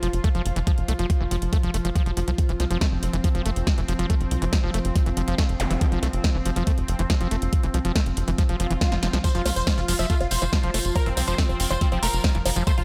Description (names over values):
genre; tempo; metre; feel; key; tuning
psychedelic trance; 140 BPM; 4/4; straight; F major; A4 = 440 Hz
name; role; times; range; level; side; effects
evolving wavetable pad; sustained chords; 0.0-12.8 s; F3 to Bb4; -34 LUFS; equal; chorus, built-in reverb, sidechain pumping
overdriven acid bass; riff; 0.0-12.7 s; E3 to A3; -33 LUFS; equal; distortion, sidechain pumping, digital delay
tight sequencer bass; bass; 0.0-12.8 s; F1 to C2; -28 LUFS; equal; none
big-room dance drum kit; drums; 0.0-12.8 s; bongos, hi-hat, snare drum; -32 LUFS; equal; studio reverb
electronic kick drum; drums; 0.2-12.8 s; none; -24 LUFS; equal; overdrive, studio reverb
zap and swell; sound effects; 5.6-5.7, 8.6-9.2 s; none; -36 LUFS; equal; none
supersaw stab; melody; 9.2-12.8 s; C4 to E5; -31 LUFS; equal; phaser, sidechain pumping, digital delay
tambourine; percussion; 9.2-12.8 s; none; -36 LUFS; equal; none
room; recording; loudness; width
digital ambience; none; -23 LUFS; mono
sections
0.0-12.8 A section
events
swell 8.6-9.2; drum fill 8.9-9.2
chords
0.0 F5